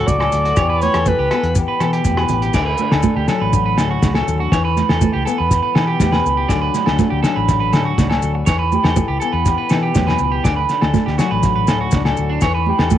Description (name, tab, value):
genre	highlife guitar band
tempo	122 BPM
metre	4/4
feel	straight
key	D major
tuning	A4 = 440 Hz
part	breathy alto saxophone	melody	0.0-1.6 s	B4 to D5	-18 LUFS	equal	cassette tape
part	fingerpicked steel-string acoustic guitar	accompaniment	0.0-13.0 s	A2 to A4	-23 LUFS	left 9 dB	cassette tape
part	electric guitar at the edge of break-up	arpeggios	0.0-13.0 s	D4 to D5	-21 LUFS	right 8 dB	cassette tape, tape echo
part	fingered electric bass	bass	0.0-13.0 s	A1 to E3	-21 LUFS	equal	none
part	cloth-damped thuddy drum kit	drums	0.1-13.0 s	crash cymbal, hi-hat, kick drum, rim click, snare drum	-19 LUFS	equal	none
part	congas	percussion	0.1-13.0 s	none	-23 LUFS	right 7 dB	none
part	maracas	percussion	0.1-13.0 s	none	-33 LUFS	left 10 dB	none
part	agogo bells	percussion	0.2-12.9 s	none	-26 LUFS	left 9 dB	none
room	light reverb, small room ambience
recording	home recording on cassette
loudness	-14 LUFS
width	side -11 dB against mid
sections	0.0-2.5 A section; 2.5-13.0 B section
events	alto saxophone solo 0.0-2.5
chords	0.0 D; 0.6 Em; 2.5 D; 4.5 Em; 6.5 D; 8.5 Em; 10.4 D; 12.4 Em